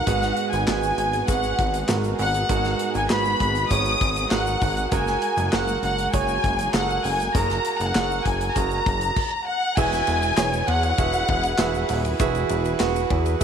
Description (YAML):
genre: piano-driven pop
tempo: 99 BPM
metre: 4/4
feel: straight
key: unclear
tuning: A4 = 438 Hz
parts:
  - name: warm studio violin section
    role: melody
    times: 0.0-11.9 s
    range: F#5 to D#6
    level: -24 LUFS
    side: left 2 dB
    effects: none
  - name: warm concert grand piano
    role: accompaniment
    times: 0.0-13.4 s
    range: G#2 to F#5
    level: -26 LUFS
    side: right 10 dB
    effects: none
  - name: warm studio string section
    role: sustained chords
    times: 0.0-13.4 s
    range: E3 to B4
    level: -34 LUFS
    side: equal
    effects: none
  - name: chorused synth bass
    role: bass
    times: 0.1-13.4 s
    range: D#1 to E2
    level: -26 LUFS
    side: left 1 dB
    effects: none
  - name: modern studio drum kit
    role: drums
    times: 0.1-13.4 s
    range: crash cymbal, handclaps, hi-hat, kick drum, ride cymbal, snare drum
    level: -27 LUFS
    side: left 1 dB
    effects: none
  - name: tube shaker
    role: percussion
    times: 0.1-13.4 s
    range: none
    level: -42 LUFS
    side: left 18 dB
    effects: none
room: moderate echo chamber reverb, RT60 2.4 s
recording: 1960s-style stereo with parts hard left and right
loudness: -20 LUFS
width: side -7 dB against mid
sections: 0.0-9.8 A section; 9.8-13.4 B section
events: none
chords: 0.1 G#m7; 4.9 F#add9; 9.8 Eadd9